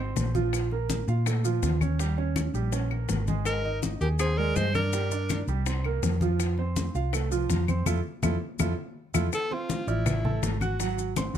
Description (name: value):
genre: Afro-Cuban jazz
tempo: 164 BPM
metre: 4/4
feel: straight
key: unclear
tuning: A4 = 438 Hz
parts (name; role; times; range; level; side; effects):
- warm baby grand piano; accompaniment; 0.0-11.4 s; F3 to Gb6; -32 LUFS; right 9 dB; none
- hollow-body short-scale fingered electric bass; bass; 0.0-11.4 s; Ab1 to Bb2; -27 LUFS; equal; none
- bongos; percussion; 0.2-11.4 s; none; -37 LUFS; left 6 dB; none
- congas; percussion; 0.2-11.4 s; none; -33 LUFS; left 3 dB; none
- maracas; percussion; 0.2-11.4 s; none; -39 LUFS; left 9 dB; none
- claves; percussion; 0.5-11.3 s; none; -38 LUFS; left 10 dB; none
- breathy alto saxophone; melody; 3.5-5.4, 9.3-11.0 s; E4 to C5; -31 LUFS; equal; none
- breathy mellow concert flute; second line; 3.5-5.4 s; Bb4 to Eb5; -38 LUFS; left 7 dB; tape echo
room: light reverb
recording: none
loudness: -25 LUFS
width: side -10 dB against mid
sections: 0.0-9.3 A section; 9.3-11.4 B section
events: band accent 7.9-9.3; drum fill 8.4-9.3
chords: 0.0 Abadd9; 0.5 Bb5; 2.0 Eb7; 3.5 Abadd9; 4.9 Gm; 5.7 C7sus4; 6.4 Fmaj7; 9.3 Dm9; 10.8 Ab7